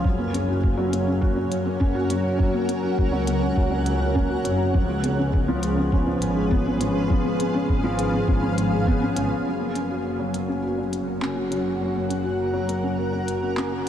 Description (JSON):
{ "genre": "piano and strings electronica", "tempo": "102 BPM", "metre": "4/4", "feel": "straight", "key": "F# major", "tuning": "A4 = 442 Hz", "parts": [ { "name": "granular cloud pad", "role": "sustained chords", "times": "0.0-13.9 s", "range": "C#4 to F#5", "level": "-29 LUFS", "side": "right 1 dB", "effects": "built-in reverb, analog chorus, sidechain pumping" }, { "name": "felt-muted upright piano", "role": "riff", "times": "0.0-13.9 s", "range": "E#3 to F#4", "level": "-24 LUFS", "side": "left 1 dB", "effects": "ensemble chorus, tape echo" }, { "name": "dark chamber double bass section", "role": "bass", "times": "0.0-13.9 s", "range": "F#1 to F#2", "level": "-28 LUFS", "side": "equal", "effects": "sidechain pumping" }, { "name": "electronic kick drum", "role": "drums", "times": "0.0-9.0 s", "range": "none", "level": "-22 LUFS", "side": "equal", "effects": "studio reverb" }, { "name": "minimal click drum kit", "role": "drums", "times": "0.3-13.9 s", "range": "handclaps, hi-hat", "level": "-36 LUFS", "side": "left 1 dB", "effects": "studio reverb" } ], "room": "moderate huge ambient reverb, RT60 8.8 s", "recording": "dreamy mix soaked in reverb", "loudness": "-21 LUFS", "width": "side -10 dB against mid", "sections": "0.0-9.5 A section; 9.5-13.9 B section", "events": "none", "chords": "0.0 F#; 4.8 C#7; 9.5 F#" }